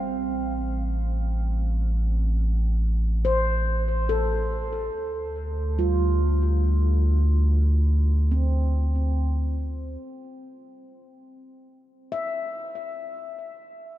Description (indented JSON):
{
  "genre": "ambient",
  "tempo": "71 BPM",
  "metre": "3/4",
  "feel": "straight",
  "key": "unclear",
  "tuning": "A4 = 440 Hz",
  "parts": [
    { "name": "handpan", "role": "arpeggios", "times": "0.0-14.0 s", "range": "G3 to E5", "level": "-30 LUFS", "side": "equal", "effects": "tape echo" },
    { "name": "warm sub bass", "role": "bass", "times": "0.0-10.0 s", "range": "A1 to D2", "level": "-22 LUFS", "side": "equal", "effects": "none" }
  ],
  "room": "light reverb, studio ambience",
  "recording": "dark, warm production",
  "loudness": "-22 LUFS",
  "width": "side -13 dB against mid",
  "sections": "0.0-10.0 A section; 10.0-14.0 B section",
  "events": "fade-out on handpan 0.0-10.0",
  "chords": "0.0 Am; 4.9 Dm7; 10.0 N.C."
}